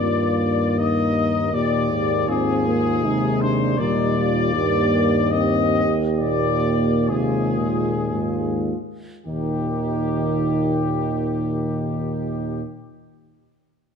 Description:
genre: classical, hymn-like piece for brass band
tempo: 50-82 BPM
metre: 3/4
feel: rubato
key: Eb major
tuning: A4 = 441 Hz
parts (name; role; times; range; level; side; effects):
- clear trumpet section; melody; 0.0-12.6 s; G4 to Eb5; -25 LUFS; left 7 dB; none
- mellow French horn section; second line; 0.0-12.6 s; D4 to G4; -27 LUFS; right 10 dB; none
- dark euphonium; accompaniment; 0.0-12.6 s; Eb3 to C4; -26 LUFS; left 4 dB; none
- mellow trombone; accompaniment; 0.0-12.6 s; G2 to C3; -27 LUFS; right 2 dB; none
- warm tuba; bass; 0.0-12.6 s; Eb2; -24 LUFS; equal; none
room: moderate scoring stage reverb, RT60 1.9 s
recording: none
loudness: -19 LUFS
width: side -6 dB against mid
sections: 0.0-9.3 A section; 9.3-12.8 B section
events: slowing down 2.7-9.3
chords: 0.0 Eb; 1.5 Bb7/Eb; 3.8 Eb; 6.2 Bb7/Eb; 9.3 Eb

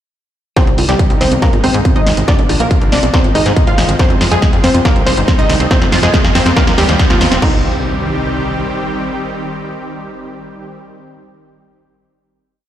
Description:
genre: uplifting trance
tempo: 140 BPM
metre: 4/4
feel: straight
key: C minor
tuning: A4 = 440 Hz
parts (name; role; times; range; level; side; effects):
- wide unison pluck; melody; 0.6-10.8 s; F3 to F5; -17 LUFS; equal; sidechain pumping, ping-pong delay
- supersaw pad; sustained chords; 0.6-10.8 s; C3 to G4; -21 LUFS; equal; sidechain pumping
- tight sequenced synth; arpeggios; 0.6-7.6 s; G3 to C5; -22 LUFS; right 2 dB; none
- electronic kick drum; drums; 0.6-7.5 s; none; -13 LUFS; equal; distortion, overdrive
- punchy analog drum machine; drums; 0.6-7.5 s; crash cymbal, hi-hat, rim click, snare drum; -18 LUFS; equal; none
- riser and impact; sound effects; 4.5-10.8 s; none; -24 LUFS; right 1 dB; none
- tight sequencer bass; bass; 0.7-8.7 s; Eb1 to Ab2; -16 LUFS; equal; sidechain pumping
room: light reverb, digital ambience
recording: played on a big sound system in a bare room, large studio reverb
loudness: -10 LUFS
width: side -11 dB against mid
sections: 0.6-7.4 build; 7.4-10.9 final chord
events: build-up 0.6-7.4; drum fill 0.6-7.4; filter sweep on synth arpeggio sound 0.6-7.4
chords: 0.6 Cm; 1.4 Ab; 2.3 Bbadd9; 3.1 Ab; 4.0 Fm; 4.9 Cm; 5.7 Fm; 6.6 Ebadd9; 7.4 Cm

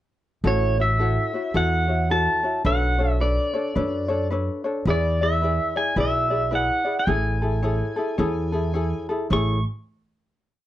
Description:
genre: Hawaiian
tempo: 108 BPM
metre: 4/4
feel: swing 61% on 8ths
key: A major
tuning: A4 = 436 Hz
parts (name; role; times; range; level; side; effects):
- ukulele; accompaniment; 0.4-9.6 s; D4 to D5; -26 LUFS; left 3 dB; none
- upright bass; bass; 0.4-9.6 s; A1 to F#2; -24 LUFS; right 1 dB; none
- pedal steel guitar; melody; 0.5-9.6 s; C#5 to C#6; -24 LUFS; right 1 dB; none
room: light reverb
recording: nothing above 11.0 kHz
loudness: -20 LUFS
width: side -13 dB against mid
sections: 0.4-9.3 A section; 9.3-10.7 final chord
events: none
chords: 0.4 A6; 2.7 Bm9; 4.9 E7; 7.1 Amaj7

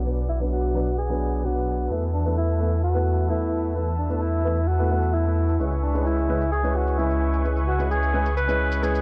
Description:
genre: EDM, festival progressive house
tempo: 130 BPM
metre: 4/4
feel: straight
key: unclear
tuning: A4 = 440 Hz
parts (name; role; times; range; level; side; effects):
- breathy alto saxophone; melody; 0.0-9.0 s; D4 to B4; -29 LUFS; equal; delay
- warm grand piano; accompaniment; 0.0-9.0 s; F#3 to B4; -31 LUFS; equal; none
- rich studio string section; sustained chords; 0.0-9.0 s; B4 to E6; -37 LUFS; equal; none
- detuned saw bass; bass; 0.0-9.0 s; B1 to E2; -26 LUFS; equal; chorus
- shaker; drums; 0.1-9.0 s; none; -56 LUFS; equal; overdrive
room: light reverb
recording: low-pass filter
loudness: -23 LUFS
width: mono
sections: 0.0-9.0 A section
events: filter sweep 0.0-9.0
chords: 0.0 Bm; 1.9 Esus4; 5.6 C#m7

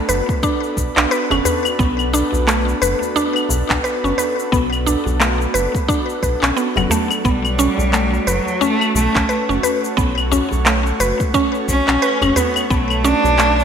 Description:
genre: organic downtempo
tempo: 88 BPM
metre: 4/4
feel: swing 59% on 16ths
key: B minor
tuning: A4 = 440 Hz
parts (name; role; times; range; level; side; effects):
- airy breathy pad; sustained chords; 0.0-13.6 s; A3 to C#5; -24 LUFS; right 1 dB; chorus, sidechain pumping
- mallet-like synth pluck; arpeggios; 0.1-13.6 s; F#3 to B4; -19 LUFS; equal; chorus, ping-pong delay
- round analog bass; bass; 0.1-13.6 s; F#1 to B1; -21 LUFS; equal; sidechain pumping
- electronic shaker, handclaps and claves; drums; 0.1-13.6 s; none; -21 LUFS; left 1 dB; none
- electronic kick drum; drums; 0.3-12.9 s; none; -21 LUFS; equal; none
- djembe; percussion; 1.3-13.4 s; none; -28 LUFS; right 1 dB; none
- warm cello; melody; 7.3-13.6 s; F#3 to D4; -19 LUFS; right 1 dB; ping-pong delay
room: wet lush hall reverb, RT60 2.1 s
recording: bright 1980s-style digital production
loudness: -15 LUFS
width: side -7 dB against mid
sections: 0.0-13.6 A section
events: none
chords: 0.0 Bm7; 7.2 F#m

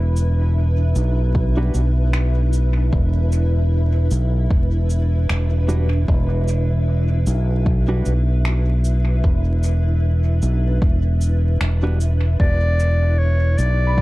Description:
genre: ambient dub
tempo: 76 BPM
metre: 4/4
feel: swing 57% on 16ths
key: unclear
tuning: A4 = 440 Hz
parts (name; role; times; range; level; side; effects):
- granular cloud pad; sustained chords; 0.0-14.0 s; D4 to E5; -29 LUFS; equal; built-in reverb
- fingered electric bass; bass; 0.0-14.0 s; E1 to B1; -17 LUFS; equal; none
- electronic shaker and finger snaps; drums; 0.2-13.8 s; none; -33 LUFS; equal; dub echo
- electronic kick drum; drums; 1.3-14.0 s; none; -19 LUFS; equal; overdrive
- clean electric guitar; stabs; 1.6-12.0 s; G3 to F#4; -30 LUFS; right 2 dB; dub echo
- warm clarinet; melody; 12.4-14.0 s; C#5 to D5; -28 LUFS; left 1 dB; dub echo
- concert harp; arpeggios; 13.9-14.0 s; B5; -25 LUFS; right 1 dB; none
room: little or no reverb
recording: dark, warm production, vinyl crackle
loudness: -16 LUFS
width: side -19 dB against mid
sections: 0.0-14.0 A section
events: none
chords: 0.0 E7(no3)

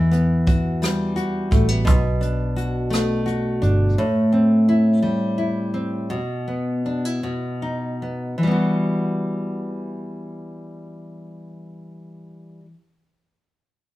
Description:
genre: six-eight pop ballad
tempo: 50-57 BPM (dotted quarters)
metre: 6/8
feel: straight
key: E minor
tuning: A4 = 441 Hz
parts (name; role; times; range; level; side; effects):
- nylon-string guitar; accompaniment; 0.0-12.7 s; A2 to F#4; -21 LUFS; equal; none
- vintage muted fingered electric bass; bass; 0.0-4.0 s; G1 to E2; -23 LUFS; right 1 dB; none
- jazz brush drum kit; drums; 0.1-3.8 s; hi-hat, kick drum, rim click; -21 LUFS; equal; none
room: moderate large studio reverb, RT60 0.9 s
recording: band playing live in one room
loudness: -19 LUFS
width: side -16 dB against mid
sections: 0.0-8.4 A section; 8.4-13.2 B section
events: slowing down 4.0-8.4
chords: 0.0 Emadd9; 1.9 Bm7; 4.0 Am7; 6.1 E5/B; 7.2 B; 8.4 Emadd9

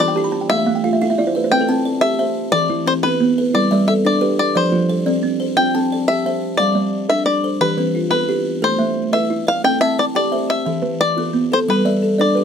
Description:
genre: southern african traditional, mbira-style interlocking cycle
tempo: 118 BPM (dotted quarters)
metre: 12/8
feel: straight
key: C major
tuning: A4 = 442 Hz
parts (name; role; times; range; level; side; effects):
- bluegrass banjo; melody; 0.0-12.4 s; B4 to G5; -19 LUFS; left 1 dB; none
- buzzing kalimba; arpeggios; 0.0-12.4 s; E3 to A5; -20 LUFS; left 2 dB; none
- kalimba; arpeggios; 0.0-12.4 s; E3 to B5; -21 LUFS; right 4 dB; none
room: light reverb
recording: close, detailed microphones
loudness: -15 LUFS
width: side -7 dB against mid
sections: 0.0-5.6 A section; 5.6-12.4 A section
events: kalimba fill 0.0-1.5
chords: 0.0 Em; 0.5 A5; 1.5 C; 2.5 E5; 3.5 G; 4.6 F5; 5.6 C; 6.6 G5; 7.6 Em; 8.6 Am; 9.6 C; 10.7 E5; 11.7 G

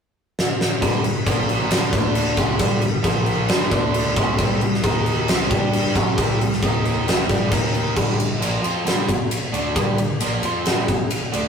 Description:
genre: hard rock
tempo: 134 BPM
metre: 4/4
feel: straight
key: unclear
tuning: A4 = 440 Hz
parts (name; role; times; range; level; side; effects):
- huge arena drum kit; drums; 0.4-11.4 s; crash cymbal, kick drum, ride cymbal, snare drum; -19 LUFS; left 1 dB; none
- overdriven electric guitar; riff; 0.8-11.5 s; G2 to G4; -24 LUFS; right 3 dB; none
- overdriven semi-hollow guitar; riff; 0.8-11.5 s; G2 to G4; -30 LUFS; left 4 dB; none
- picked electric bass; bass; 0.8-11.5 s; G1 to G2; -31 LUFS; equal; none
room: moderate small room reverb, RT60 0.5 s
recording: rough rehearsal-room recording, warm saturation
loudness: -18 LUFS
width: side -6 dB against mid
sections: 0.8-8.0 A section; 8.0-11.5 B section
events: drum fill 0.4-0.8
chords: 0.0 N.C.; 0.8 G5; 1.3 Bb5; 1.7 G5; 1.9 D5; 2.4 G5; 3.0 Bb5; 3.5 G5; 3.7 D5; 4.2 C#5; 4.4 C5; 4.8 Eb5; 5.3 C5; 5.5 G5; 6.0 C5; 6.6 Eb5; 7.1 C5; 7.5 Eb5; 8.0 G5

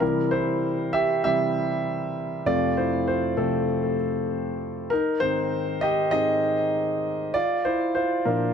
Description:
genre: pop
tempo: 98 BPM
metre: 4/4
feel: straight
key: unclear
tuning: A4 = 440 Hz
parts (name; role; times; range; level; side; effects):
- warm concert grand piano; solo; 0.0-8.5 s; F2 to E5; -22 LUFS; equal; digital delay
room: moderate plate reverb, RT60 2.5 s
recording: dark, warm production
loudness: -22 LUFS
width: side -7 dB against mid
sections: 0.0-8.5 A section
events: grand piano solo 0.0-8.5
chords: 0.0 C; 2.5 F; 4.9 Ab; 7.4 Bb

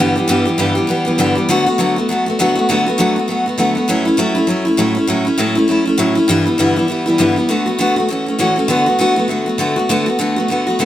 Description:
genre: rock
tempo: 200 BPM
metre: 4/4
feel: swing 59% on 8ths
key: D major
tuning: A4 = 440 Hz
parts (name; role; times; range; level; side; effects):
- picked steel-string acoustic guitar; solo; 0.0-10.9 s; G2 to G4; -13 LUFS; equal; none
room: light reverb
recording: none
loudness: -13 LUFS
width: side -12 dB against mid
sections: 0.0-8.7 A section; 8.7-10.9 B section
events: none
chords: 0.0 G6; 1.5 D6; 3.9 A6; 6.3 G6; 7.5 D6; 8.1 A6; 8.7 D6

